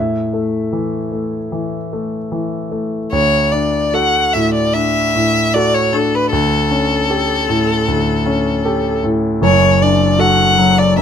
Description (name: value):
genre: classical, romantic duo for violin and grand piano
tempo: 76 BPM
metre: 4/4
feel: rubato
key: D major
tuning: A4 = 441 Hz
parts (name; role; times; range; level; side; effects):
- warm concert grand piano; accompaniment; 0.0-11.0 s; F#1 to E5; -15 LUFS; equal; none
- rich violin; melody; 3.1-11.0 s; A4 to F#5; -15 LUFS; left 1 dB; none
room: light reverb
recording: close, detailed microphones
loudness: -13 LUFS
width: side -8 dB against mid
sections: 0.0-3.1 A section; 3.1-11.0 B section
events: none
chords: 0.0 A5; 3.1 D; 6.3 A7/D; 9.4 D/F#